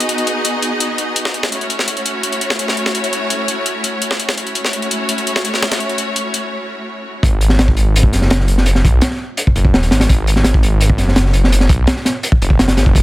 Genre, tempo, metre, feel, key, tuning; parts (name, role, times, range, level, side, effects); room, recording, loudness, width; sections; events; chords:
drum and bass, jungle; 168 BPM; 4/4; straight; G# phrygian; A4 = 440 Hz
bright studio string section; sustained chords; 0.0-7.2 s; A3 to D#5; -19 LUFS; left 1 dB
breakbeat sampler-style drum kit; drums; 0.0-6.4 s; hi-hat, snare drum; -18 LUFS; left 1 dB; high-pass filter on hats, soft clipping on snare, high-pass filter on snare, high-pass filter on room
detuned saw bass; bass; 7.2-13.0 s; D#1 to B1; -14 LUFS; equal
crunchy breakbeat drum kit; drums; 7.2-13.0 s; hi-hat, kick drum, snare drum; -13 LUFS; equal
light reverb, small room ambience; dense, heavily limited modern master; -13 LUFS; side -17 dB against mid
0.0-7.2 A section; 7.2-13.0 B section
break 6.5-7.2; drop 7.2-13.0
0.0 G#m7; 1.5 F#m7; 7.2 G#7(no3)